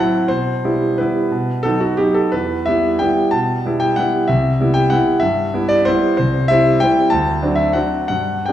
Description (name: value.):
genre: classical, piano waltz.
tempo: 156-206 BPM.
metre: 3/4.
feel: rubato.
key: E minor.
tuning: A4 = 443 Hz.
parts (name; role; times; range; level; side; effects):
clear concert grand piano; solo; 0.0-8.5 s; C2 to A5; -14 LUFS; equal; none.
room: wet recital hall reverb, RT60 1.6 s.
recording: recorded in a church or concert hall.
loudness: -14 LUFS.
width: side -11 dB against mid.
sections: 0.0-8.5 A section.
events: none.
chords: 0.3 Em/B; 1.3 B; 2.3 Em; 4.3 Cmaj7; 6.2 C; 7.1 D7.